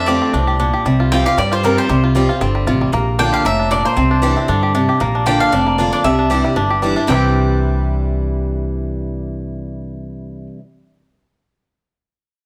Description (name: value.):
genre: bluegrass.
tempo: 231 BPM.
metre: 4/4.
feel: swing 54% on 8ths.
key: C mixolydian.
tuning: A4 = 438 Hz.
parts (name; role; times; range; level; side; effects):
bluegrass banjo; melody; 0.0-10.5 s; G3 to G4; -22 LUFS; equal; none.
mandolin; melody; 0.0-10.5 s; Bb4 to G5; -23 LUFS; equal; slapback echo.
picked acoustic archtop guitar; accompaniment; 0.0-10.6 s; F2 to F4; -21 LUFS; equal; none.
upright bass; bass; 0.0-10.5 s; F1 to G2; -22 LUFS; equal; none.
room: moderate large studio reverb, RT60 1.2 s.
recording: none.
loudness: -16 LUFS.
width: mono.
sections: 0.0-5.0 A section; 5.0-7.1 B section; 7.1-9.2 C section.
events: none.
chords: 0.0 F6; 0.9 Csus4; 2.9 Bb; 4.0 Cadd9; 5.0 Bb; 6.0 Cadd9.